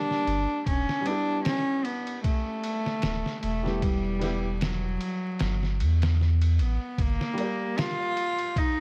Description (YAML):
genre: trip hop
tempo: 76 BPM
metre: 4/4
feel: swing 55% on 16ths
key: unclear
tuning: A4 = 440 Hz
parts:
  - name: rich cello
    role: melody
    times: 0.0-8.8 s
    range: F#3 to F4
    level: -31 LUFS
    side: equal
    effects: tape echo
  - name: felt-muted upright piano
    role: accompaniment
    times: 0.0-8.8 s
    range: G3 to D5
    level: -38 LUFS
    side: equal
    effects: tremolo, tape echo
  - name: trip hop sampler-style drum kit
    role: drums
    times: 0.1-8.8 s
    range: kick drum, ride cymbal, snare drum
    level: -34 LUFS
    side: equal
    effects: none
  - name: round analog bass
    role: bass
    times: 0.3-7.2 s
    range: D1 to E2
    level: -28 LUFS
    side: equal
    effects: none
room: little or no reverb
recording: dark, warm production, vinyl crackle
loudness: -27 LUFS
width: mono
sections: 0.0-8.8 A section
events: none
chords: 0.0 Gm; 0.7 Em; 7.0 Gm